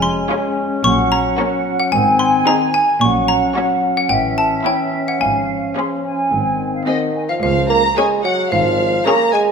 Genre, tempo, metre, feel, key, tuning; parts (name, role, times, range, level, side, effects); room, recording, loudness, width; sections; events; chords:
cinematic, playful, whimsical film cue; 110 BPM; 4/4; straight; Db major; A4 = 437 Hz
xylophone with wooden mallets; melody; 0.0-9.5 s; Eb5 to Db6; -19 LUFS; left 1 dB
bright large flute ensemble; second line; 0.0-7.2 s; E5 to C6; -20 LUFS; right 1 dB
mellow clarinet; second line; 0.0-7.1 s; C4 to Db4; -24 LUFS; left 3 dB
mellow French horn section; sustained chords; 0.0-7.1 s; Eb3 to Db4; -23 LUFS; left 3 dB
rich studio cello section; bass; 0.0-8.9 s; Db2 to Bb2; -24 LUFS; right 4 dB
warm studio double bass section; bass; 0.0-8.9 s; F1 to Db2; -27 LUFS; right 3 dB
warm studio violin section; melody; 0.3-9.4 s; Ab4 to Bb5; -22 LUFS; left 1 dB
clear studio violin section; second line; 0.3-9.5 s; E4 to Db5; -26 LUFS; left 3 dB
warm studio viola section; accompaniment; 0.3-9.5 s; C4 to Ab4; -25 LUFS; right 2 dB
dark bassoon; accompaniment; 6.9-9.5 s; Eb3 to Bb3; -17 LUFS; right 2 dB
warm tuba; bass; 7.4-8.9 s; Ab1 to Db2; -25 LUFS; right 4 dB
wet scoring stage reverb, RT60 1.8 s; minimal, uncompressed stereo recording; -14 LUFS; side -6 dB against mid
0.0-7.4 A section; 7.4-9.5 B section
0.0 Db/F; 0.8 Gb/Bb; 1.9 Ab; 3.0 Gb/Bb; 4.1 A; 5.2 Db/Ab; 6.3 Ab; 7.4 Db